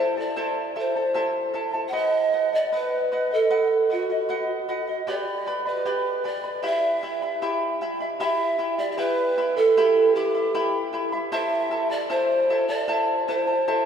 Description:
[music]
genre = andean folk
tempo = 77 BPM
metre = 2/4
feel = straight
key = E minor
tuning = A4 = 445 Hz
[part]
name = mellow hollow pan flute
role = melody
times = 0.0-13.9 s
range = F#4 to F#5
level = -23 LUFS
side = right 2 dB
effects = none
[part]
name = charango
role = accompaniment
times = 0.0-13.9 s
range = E4 to B5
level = -26 LUFS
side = equal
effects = none
[sound]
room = wet cathedral reverb, RT60 6.0 s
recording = recorded in a church or concert hall, small room reverb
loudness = -21 LUFS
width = side -8 dB against mid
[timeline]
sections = 0.0-8.2 A section; 8.2-13.9 A section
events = none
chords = 0.0 Am; 1.9 B; 5.1 G; 6.6 Em; 11.3 Am

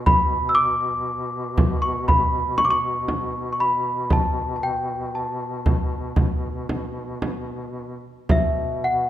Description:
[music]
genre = caucasian folk, Caucasian lament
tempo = 58 BPM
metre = 4/4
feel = rubato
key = B minor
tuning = A4 = 440 Hz
[part]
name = mellow duduk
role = drone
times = 0.0-9.1 s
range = B2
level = -30 LUFS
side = equal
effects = none
[part]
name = celesta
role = melody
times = 0.1-9.1 s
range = E5 to E6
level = -22 LUFS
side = equal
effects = none
[part]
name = frame drum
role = percussion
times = 0.1-8.5 s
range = none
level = -22 LUFS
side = right 1 dB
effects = none
[sound]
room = moderate concert hall reverb, RT60 1.8 s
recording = minimal, uncompressed stereo recording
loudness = -20 LUFS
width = side -12 dB against mid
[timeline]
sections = 0.0-9.1 A section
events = none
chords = none

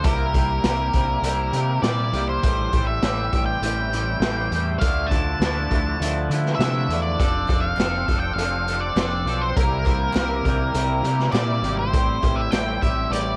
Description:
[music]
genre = indie rock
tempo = 101 BPM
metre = 4/4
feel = straight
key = unclear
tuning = A4 = 440 Hz
[part]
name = octave-fuzz lead guitar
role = melody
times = 0.0-13.4 s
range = Bb4 to A5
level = -28 LUFS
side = equal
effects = distortion
[part]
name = twangy electric guitar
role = riff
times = 0.0-13.4 s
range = A2 to A4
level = -29 LUFS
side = equal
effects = double-tracked, cassette tape
[part]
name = growling fingered electric bass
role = bass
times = 0.0-13.4 s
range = F1 to D3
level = -28 LUFS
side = equal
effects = overdrive
[part]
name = raw garage drum kit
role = drums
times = 0.0-13.3 s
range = hi-hat, kick drum, snare drum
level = -26 LUFS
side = equal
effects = cassette tape
[part]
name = group handclap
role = percussion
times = 7.5-12.7 s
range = none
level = -44 LUFS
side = equal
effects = none
[sound]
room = little or no reverb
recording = home recording on cassette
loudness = -22 LUFS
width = mono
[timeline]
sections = 0.0-13.4 A section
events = none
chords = 0.1 C7; 2.4 Am7; 4.8 Dmadd9; 7.2 F6; 9.6 C7; 11.9 Am7

